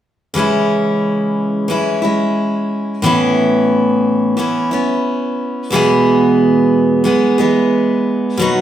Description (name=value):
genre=pop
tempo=90 BPM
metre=4/4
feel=straight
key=C# minor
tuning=A4 = 440 Hz
part: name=picked steel-string acoustic guitar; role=accompaniment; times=0.3-8.6 s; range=E2 to G#4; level=-12 LUFS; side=equal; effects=none
room=wet large studio reverb, RT60 1.2 s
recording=band playing live in one room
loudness=-12 LUFS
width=side -11 dB against mid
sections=0.4-8.6 A section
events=none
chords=0.4 C#m; 3.0 Aadd9; 5.7 E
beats=| 0.35 1.02 1.69 2.36 | 3.03 3.70 4.37 5.04 | 5.71 6.38 7.05 7.72 | 8.38